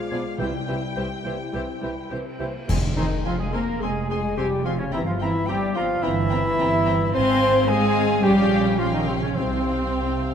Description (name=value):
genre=classical, dramatic, fast romantic movement for symphony orchestra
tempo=107 BPM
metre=4/4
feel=straight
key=F minor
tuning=A4 = 440 Hz
part: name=rich studio violin section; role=melody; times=0.0-10.3 s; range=F5 to C6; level=-36 LUFS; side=left 5 dB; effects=none
part: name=dark French horn section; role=sustained chords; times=0.0-10.3 s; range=C3 to F4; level=-28 LUFS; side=left 4 dB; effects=none
part: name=mellow clarinet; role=second line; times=0.1-10.3 s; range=Bb3 to C5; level=-28 LUFS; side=left 2 dB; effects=none
part: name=mellow cor anglais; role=second line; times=0.1-10.3 s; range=C4 to D5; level=-31 LUFS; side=right 2 dB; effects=none
part: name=rich symphonic violin section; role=second line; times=0.1-10.3 s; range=G4 to Ab5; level=-36 LUFS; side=left 4 dB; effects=none
part: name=silver concert flute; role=second line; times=0.1-10.3 s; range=C5 to G#6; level=-30 LUFS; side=left 1 dB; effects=none
part: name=mellow bassoon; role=accompaniment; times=0.1-2.5 s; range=E3 to F3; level=-35 LUFS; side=right 2 dB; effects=none
part: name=warm symphonic viola section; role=accompaniment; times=0.1-10.3 s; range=G3 to F4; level=-31 LUFS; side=equal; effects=none
part: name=rich symphonic double bass section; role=bass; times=0.1-10.3 s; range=F1 to C2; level=-29 LUFS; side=right 3 dB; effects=none
part: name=warm symphonic cello section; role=bass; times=0.1-10.3 s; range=B2 to C4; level=-27 LUFS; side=right 3 dB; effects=none
part: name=cymbal swell, clash cymbals and concert bass drum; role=percussion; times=0.4-3.8 s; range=none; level=-31 LUFS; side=equal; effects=none
part: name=timpani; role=percussion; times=0.4-3.5, 9.4-10.2 s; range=F2 to C3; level=-32 LUFS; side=equal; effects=none
room=moderate scoring stage reverb, RT60 2.0 s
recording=none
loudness=-20 LUFS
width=side -8 dB against mid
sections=0.0-2.7 A section; 2.7-10.3 B section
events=band accent 2.7-3.3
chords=0.4 C; 2.7 Fm; 4.9 C7/G; 7.1 Fm/Ab; 8.2 Gm7b5/Bb; 9.4 Csus4